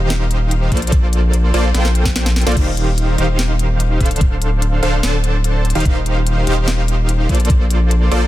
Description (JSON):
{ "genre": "future bass", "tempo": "146 BPM", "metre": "4/4", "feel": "half-time", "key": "Eb lydian", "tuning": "A4 = 440 Hz", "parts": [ { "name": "supersaw stab", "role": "riff", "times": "0.0-8.2 s", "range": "D3 to A5", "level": "-20 LUFS", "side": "equal", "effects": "sidechain pumping, ping-pong delay" }, { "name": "saturated sub bass", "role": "bass", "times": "0.0-8.3 s", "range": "D1 to Bb1", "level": "-16 LUFS", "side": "equal", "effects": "sidechain pumping" }, { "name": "trap drum kit", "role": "drums", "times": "0.1-8.2 s", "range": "crash cymbal, hi-hat, snare drum", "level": "-24 LUFS", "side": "left 1 dB", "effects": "studio reverb" }, { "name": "electronic kick drum", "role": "drums", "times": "0.7-7.6 s", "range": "none", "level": "-16 LUFS", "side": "equal", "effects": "studio reverb" } ], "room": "digital ambience", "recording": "dense, heavily limited modern master", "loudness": "-13 LUFS", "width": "side -15 dB against mid", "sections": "0.0-8.3 A section", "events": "drum fill 1.7-2.6", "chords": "0.0 Eb6; 0.7 Bbmaj9; 2.6 Eb6; 4.2 Dm7; 5.7 Eb6; 7.3 Bbmaj9" }